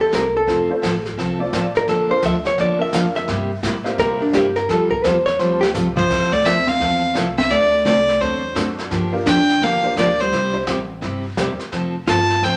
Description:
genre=country, western swing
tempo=171 BPM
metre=4/4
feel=swing 64% on 8ths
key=F major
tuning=A4 = 440 Hz
part: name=hollow-body jazz guitar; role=second line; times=0.0-12.6 s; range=F3 to F5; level=-22 LUFS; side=equal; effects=none
part: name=honky-tonk upright piano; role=accompaniment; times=0.0-11.6 s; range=G3 to D5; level=-30 LUFS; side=equal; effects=none
part: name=upright bass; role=bass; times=0.0-12.6 s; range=E1 to Bb2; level=-33 LUFS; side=equal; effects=none
part: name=picked steel-string acoustic guitar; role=accompaniment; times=0.1-12.6 s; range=C3 to A4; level=-26 LUFS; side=equal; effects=none
part: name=jazz brush drum kit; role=drums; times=0.1-12.6 s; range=brushed snare drum, crash cymbal, hi-hat, kick drum, snare drum, toms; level=-30 LUFS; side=equal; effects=none
part: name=clear fiddle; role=melody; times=6.0-12.6 s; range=C5 to A5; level=-20 LUFS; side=equal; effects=none
room=wet large studio reverb, RT60 1.0 s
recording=none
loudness=-19 LUFS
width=mono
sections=0.0-6.1 A section; 6.1-12.6 B section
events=hollow-body jazz guitar solo 0.0-6.1; drum fill 5.4-6.1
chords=0.5 F; 1.9 Bbmaj7; 3.3 C7; 4.7 Fadd9; 6.1 Fmaj7; 7.5 D7; 8.9 Gm7; 10.3 C; 11.7 F

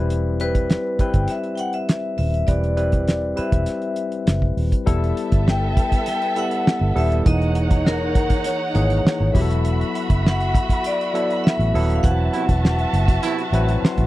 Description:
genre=lush 1970s-style soul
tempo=100 BPM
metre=4/4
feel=straight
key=unclear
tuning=A4 = 440 Hz
part: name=barky tine electric piano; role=accompaniment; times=0.0-14.1 s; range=E3 to C6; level=-25 LUFS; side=moving between left 6 dB and right 3 dB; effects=auto-pan
part: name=vintage muted fingered electric bass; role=bass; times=0.0-14.1 s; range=D#1 to A1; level=-21 LUFS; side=equal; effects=none
part: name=cloth-damped thuddy drum kit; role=drums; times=0.1-14.1 s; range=hi-hat, kick drum, snare drum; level=-19 LUFS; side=equal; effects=none
part: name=vibraphone with hard mallets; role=melody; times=0.4-14.1 s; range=A#4 to G5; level=-25 LUFS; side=left 3 dB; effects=none
part: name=dark studio violin section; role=second line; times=4.9-14.1 s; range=B3 to B5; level=-27 LUFS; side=right 2 dB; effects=none
part: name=warm horn section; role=stabs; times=12.3-13.4 s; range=C3 to E4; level=-24 LUFS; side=right 7 dB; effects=none
room=little or no reverb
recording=dry, close 1970s-style studio recording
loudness=-18 LUFS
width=side -16 dB against mid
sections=0.0-4.9 A section; 4.9-14.1 B section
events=band accent 12.0-14.1; tine electric piano fill 13.5-14.1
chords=0.0 Cmaj7; 4.9 G69/E; 7.3 F#13/E; 9.3 B7sus4/E; 12.0 Am69

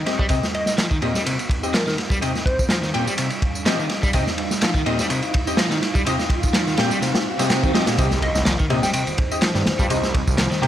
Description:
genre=breakbeat, breaks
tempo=125 BPM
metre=4/4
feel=swing 54% on 16ths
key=C minor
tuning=A4 = 441 Hz
part: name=dark analog pad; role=sustained chords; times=0.0-10.7 s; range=G3 to F5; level=-30 LUFS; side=right 2 dB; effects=chorus, phaser, vintage 12-bit sampler grit, sidechain pumping
part: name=orchestra-hit-like synth stab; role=stabs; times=0.0-10.7 s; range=C4 to G5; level=-27 LUFS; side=left 2 dB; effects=built-in reverb, analog delay
part: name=riser, swell and impact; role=sound effects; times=0.2-9.9 s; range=none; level=-31 LUFS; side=right 2 dB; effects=none
part: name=crunchy breakbeat drum kit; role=drums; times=0.1-10.7 s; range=kick drum, ride cymbal, snare drum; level=-21 LUFS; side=equal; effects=none
part: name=overdriven semi-hollow guitar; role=riff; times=0.2-10.7 s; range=Bb2 to G3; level=-25 LUFS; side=left 1 dB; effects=analog delay
part: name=electronic tambourine and handclaps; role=drums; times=0.3-10.6 s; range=none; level=-31 LUFS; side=right 1 dB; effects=high-pass filter on snare, high-pass filter on perc
part: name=plucky unison lead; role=melody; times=0.5-2.8, 8.2-9.0 s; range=Bb4 to G5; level=-28 LUFS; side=equal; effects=small speaker sound, analog delay
part: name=phased detuned saw bass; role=bass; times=8.0-10.7 s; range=C2 to C3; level=-24 LUFS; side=equal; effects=phaser
part: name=congas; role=percussion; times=8.5-10.5 s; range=none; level=-31 LUFS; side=left 3 dB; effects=none
room=light reverb, small room ambience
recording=dry, gritty hardware recording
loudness=-18 LUFS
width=side -11 dB against mid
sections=0.0-8.0 A section; 8.0-10.7 B section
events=build-up 0.0-8.0; filter sweep on analog synth pad 0.0-8.0; riser 0.2-8.0; swell 7.0-8.0; drop 8.0-10.7; impact 8.0-9.9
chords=0.0 Cm

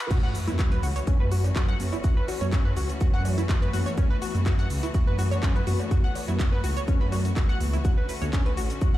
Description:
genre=progressive house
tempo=124 BPM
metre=4/4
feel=straight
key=F# minor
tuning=A4 = 440 Hz
part: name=bright studio string section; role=sustained chords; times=0.0-9.0 s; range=D3 to F#4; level=-34 LUFS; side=left 4 dB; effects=sidechain pumping
part: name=tight sequenced synth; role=arpeggios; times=0.0-9.0 s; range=C#4 to F#5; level=-33 LUFS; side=equal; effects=chorus, sidechain pumping, ping-pong delay
part: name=house drum kit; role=drums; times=0.0-8.9 s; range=cabasa, crash cymbal, handclaps, hi-hat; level=-37 LUFS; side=equal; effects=none
part: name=riser and sub drop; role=sound effects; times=0.0-2.0 s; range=none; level=-33 LUFS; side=equal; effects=none
part: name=dark detuned saw bass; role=bass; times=0.1-9.0 s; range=F#1 to F#2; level=-27 LUFS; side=equal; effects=sidechain pumping
part: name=breakbeat sampler-style drum kit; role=drums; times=0.1-8.9 s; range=hi-hat, shaker, snare drum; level=-48 LUFS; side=right 1 dB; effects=none
part: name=electronic kick drum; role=drums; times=0.1-8.9 s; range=none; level=-23 LUFS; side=equal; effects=none
part: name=congas and cowbell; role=percussion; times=0.5-8.9 s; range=none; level=-40 LUFS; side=right 5 dB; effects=sidechain pumping on perc
room=little or no reverb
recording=played on a big sound system in a bare room, large studio reverb, high-pass filter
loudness=-22 LUFS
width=side -15 dB against mid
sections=0.1-9.0 A section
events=drop 0.1-9.0; impact 0.1-2.0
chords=0.1 F#m7; 7.8 Dmaj7

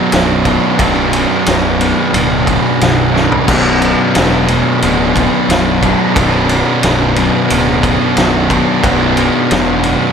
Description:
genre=stoner and doom metal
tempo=89 BPM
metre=4/4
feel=straight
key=B minor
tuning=A4 = 439 Hz
part: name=mellow tonewheel organ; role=sustained chords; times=0.0-10.1 s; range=D4 to F#5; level=-22 LUFS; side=right 1 dB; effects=chorus vibrato, stopped rotary speaker
part: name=fuzz guitar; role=riff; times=0.0-10.1 s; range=B1 to B2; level=-17 LUFS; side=left 11 dB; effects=distortion
part: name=fuzz guitar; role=riff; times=0.0-10.1 s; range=B1 to D4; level=-18 LUFS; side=equal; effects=distortion
part: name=thick fuzz guitar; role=riff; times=0.0-10.1 s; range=B1 to B2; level=-16 LUFS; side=right 9 dB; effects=distortion
part: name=fuzz fingered electric bass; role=bass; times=0.1-10.0 s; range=B0 to E1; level=-18 LUFS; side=equal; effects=overdrive
part: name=oversized low-tuned drum kit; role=drums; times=0.1-10.0 s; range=crash cymbal, kick drum, ride cymbal, snare drum, toms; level=-16 LUFS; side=equal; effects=none
room=light reverb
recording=none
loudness=-10 LUFS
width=side -6 dB against mid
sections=0.0-10.1 A section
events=drum fill 3.1-3.5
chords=0.0 Bm

